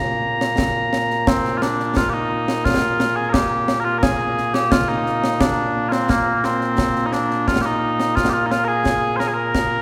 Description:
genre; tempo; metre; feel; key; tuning
scottish traditional, Scottish pipe music; 87 BPM; 4/4; straight; Bb mixolydian; A4 = 440 Hz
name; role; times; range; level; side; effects
mellow small bagpipes; melody; 0.0-9.8 s; Bb2 to Bb5; -21 LUFS; equal; none
concert snare drum and concert bass drum; drums; 0.4-9.7 s; none; -25 LUFS; equal; none
room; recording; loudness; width
wet concert hall reverb, RT60 1.9 s; recorded in a church or concert hall; -19 LUFS; mono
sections
0.0-1.3 A section; 1.3-9.8 A section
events
none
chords
none

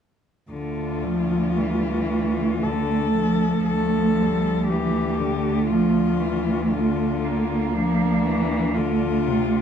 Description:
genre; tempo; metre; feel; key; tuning
classical, lyrical piece for cello ensemble; 58 BPM; 3/4; rubato; D minor; A4 = 440 Hz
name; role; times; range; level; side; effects
warm cello; melody; 0.5-9.6 s; D4 to A4; -27 LUFS; left 8 dB; none
warm cello; second line; 0.5-9.6 s; G3 to Bb3; -26 LUFS; right 7 dB; none
rich cello; accompaniment; 0.5-9.6 s; C3 to F3; -25 LUFS; left 2 dB; none
warm cello; bass; 0.5-9.6 s; D2; -25 LUFS; right 1 dB; none
room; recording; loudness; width
wet recital hall reverb, RT60 1.6 s; minimal, uncompressed stereo recording; -20 LUFS; side -8 dB against mid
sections
0.5-9.6 A section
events
none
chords
0.5 Dm

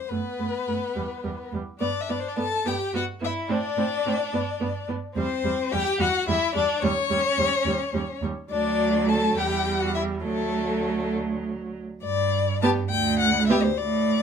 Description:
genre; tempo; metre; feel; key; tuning
quick classical-period movement for string quartet; 70 BPM (dotted quarters); 6/8; rubato; unclear; A4 = 440 Hz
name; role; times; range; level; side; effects
warm violin; melody; 0.0-14.2 s; A4 to A5; -26 LUFS; left 8 dB; none
rich violin; second line; 0.1-13.6 s; A3 to A4; -29 LUFS; left 1 dB; none
warm viola; accompaniment; 0.1-13.6 s; F#3 to C4; -29 LUFS; right 4 dB; none
warm cello; bass; 0.1-14.2 s; D2 to A2; -28 LUFS; right 5 dB; none
room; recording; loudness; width
moderate studio reverb, RT60 0.7 s; minimal, uncompressed stereo recording; -22 LUFS; side -7 dB against mid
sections
0.0-12.0 A section; 12.0-14.2 B section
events
none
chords
0.1 F#madd11; 0.9 Em; 1.8 G; 3.5 Amadd11; 4.3 G; 5.2 C/E; 6.8 Eb7; 8.5 D; 9.4 Em; 10.3 D; 12.0 G

